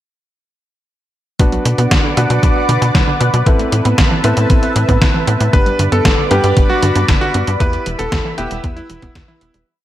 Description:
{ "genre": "italo disco", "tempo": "116 BPM", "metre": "4/4", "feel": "straight", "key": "E minor", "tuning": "A4 = 440 Hz", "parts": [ { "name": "lush unison pad", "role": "sustained chords", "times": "1.6-9.7 s", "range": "B4 to E6", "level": "-21 LUFS", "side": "right 1 dB", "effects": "chorus, phaser" }, { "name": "wide unison pluck", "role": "arpeggios", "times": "1.4-9.6 s", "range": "D3 to B3", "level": "-23 LUFS", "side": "right 3 dB", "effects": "cassette tape, tape echo" }, { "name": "warm grand piano", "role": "stabs", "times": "1.4-9.6 s", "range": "G3 to B4", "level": "-20 LUFS", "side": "left 1 dB", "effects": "tape echo" }, { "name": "tight sequencer bass", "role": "bass", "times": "1.4-9.6 s", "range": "E1 to B2", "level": "-17 LUFS", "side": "equal", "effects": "none" }, { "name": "detuned 8-bit digital drum machine", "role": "drums", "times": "1.4-9.6 s", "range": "hi-hat, snare drum", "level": "-19 LUFS", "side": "equal", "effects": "gated reverb" }, { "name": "electronic kick drum", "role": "drums", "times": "1.4-9.3 s", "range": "none", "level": "-14 LUFS", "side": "equal", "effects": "none" }, { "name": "bright electric grand piano", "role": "melody", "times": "5.5-9.6 s", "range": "E4 to B4", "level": "-19 LUFS", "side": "equal", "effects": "digital delay" } ], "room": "light reverb", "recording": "none", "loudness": "-11 LUFS", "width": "side -13 dB against mid", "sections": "1.4-9.7 verse", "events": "fade-out 6.9-9.7", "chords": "1.4 Bm; 3.5 Amadd9; 5.5 G; 7.6 Em" }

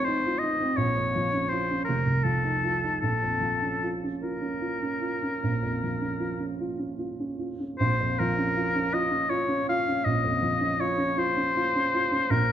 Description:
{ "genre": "classical, romantic duo for oboe and grand piano", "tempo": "49-56 BPM (dotted quarters)", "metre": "12/8", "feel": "rubato", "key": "Bb minor", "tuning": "A4 = 440 Hz", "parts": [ { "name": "clear oboe", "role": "melody", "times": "0.0-12.5 s", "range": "A4 to F5", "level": "-27 LUFS", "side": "left 2 dB", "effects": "none" }, { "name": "dark grand piano", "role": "accompaniment", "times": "0.0-12.5 s", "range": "F1 to F4", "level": "-28 LUFS", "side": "right 2 dB", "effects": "none" } ], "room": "wet recital hall reverb, RT60 1.6 s", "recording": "minimal, uncompressed stereo recording", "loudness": "-24 LUFS", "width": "side -10 dB against mid", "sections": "0.0-7.8 A section; 7.8-12.5 A section", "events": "none", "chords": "0.0 F7/A; 0.8 Bbm; 1.9 F7; 3.0 Bbm" }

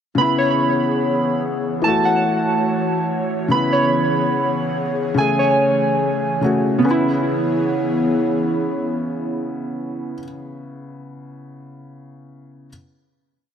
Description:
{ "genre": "hip hop, drill", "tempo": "free time", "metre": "none", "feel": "none", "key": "C# minor", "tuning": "A4 = 440 Hz", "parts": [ { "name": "felt-muted upright piano", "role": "accompaniment", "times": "0.1-12.7 s", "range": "C#3 to G#4", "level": "-22 LUFS", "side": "left 3 dB", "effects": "none" }, { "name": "airy breathy pad", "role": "sustained chords", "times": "0.5-10.2 s", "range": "E3 to C#5", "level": "-24 LUFS", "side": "equal", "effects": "chorus" }, { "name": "warbly lo-fi synth keys", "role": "arpeggios", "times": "0.2-10.2 s", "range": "B3 to B5", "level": "-20 LUFS", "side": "right 2 dB", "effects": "chorus, digital delay" } ], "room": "moderate plate reverb, RT60 2.4 s", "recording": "none", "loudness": "-17 LUFS", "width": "side -8 dB against mid", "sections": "0.2-6.8 breakdown; 6.8-10.2 final chord", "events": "none", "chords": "0.2 C#m7; 1.8 F#m7; 3.5 C#m7; 5.2 Amaj7; 6.8 C#m7" }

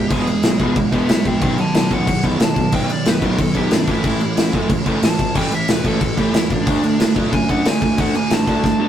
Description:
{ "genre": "punk rock", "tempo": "183 BPM", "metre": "4/4", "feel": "straight", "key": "unclear", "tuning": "A4 = 440 Hz", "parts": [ { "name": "dark smooth lead guitar", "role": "melody", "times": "0.0-8.9 s", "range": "D4 to A5", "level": "-25 LUFS", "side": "left 2 dB", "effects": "overdrive" }, { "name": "overdriven electric guitar", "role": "riff", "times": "0.0-8.9 s", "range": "A2 to D4", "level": "-20 LUFS", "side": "right 4 dB", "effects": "none" }, { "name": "raw garage guitar", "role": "riff", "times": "0.0-8.9 s", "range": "E2 to D4", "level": "-24 LUFS", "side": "left 4 dB", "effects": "overdrive" }, { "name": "fuzz picked electric bass", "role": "bass", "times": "0.0-8.9 s", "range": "E1 to F#2", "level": "-26 LUFS", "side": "left 1 dB", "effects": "overdrive" }, { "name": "big rock drum kit", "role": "drums", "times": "0.1-8.7 s", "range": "crash cymbal, kick drum, snare drum", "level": "-18 LUFS", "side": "equal", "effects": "none" } ], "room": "light reverb", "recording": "rough rehearsal-room recording", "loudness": "-15 LUFS", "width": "side -10 dB against mid", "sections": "0.0-8.9 A section", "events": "lead electric guitar solo 0.0-8.9; drum fill 8.6", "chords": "0.0 E; 1.4 B; 3.9 A5; 6.7 D" }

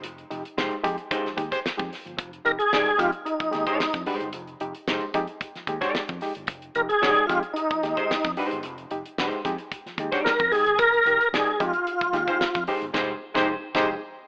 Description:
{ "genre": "funk", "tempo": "112 BPM", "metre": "4/4", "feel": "straight", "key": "F dorian", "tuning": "A4 = 442 Hz", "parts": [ { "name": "bright reed electric piano", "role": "stabs", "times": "0.0-13.9 s", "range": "F3 to G4", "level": "-34 LUFS", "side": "equal", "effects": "overdrive, fast tremolo, tube saturation" }, { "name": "fingered electric bass", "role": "bass", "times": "0.0-13.9 s", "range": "F1 to F2", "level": "-43 LUFS", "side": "equal", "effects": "none" }, { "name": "damped 70s drum kit", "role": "drums", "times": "0.0-13.9 s", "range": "crash cymbal, hi-hat, kick drum, snare drum", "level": "-33 LUFS", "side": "equal", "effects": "none" }, { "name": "vintage hollow-body jazz guitar", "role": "accompaniment", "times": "0.6-13.9 s", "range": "Ab3 to D5", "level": "-32 LUFS", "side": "equal", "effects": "none" }, { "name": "warm horn section", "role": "second line", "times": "1.5-13.9 s", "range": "Ab3 to C5", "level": "-32 LUFS", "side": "equal", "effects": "none" }, { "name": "tonewheel organ", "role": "melody", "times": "2.5-12.6 s", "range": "Eb4 to Bb4", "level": "-24 LUFS", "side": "equal", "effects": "overdrive, chorus vibrato, slow rotary speaker" } ], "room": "moderate plate reverb, RT60 1.9 s", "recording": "rough home demo mix, AM radio sound", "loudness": "-25 LUFS", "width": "mono", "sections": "0.0-14.3 A section", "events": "band accent 12.9-14.3", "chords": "0.0 Fm9" }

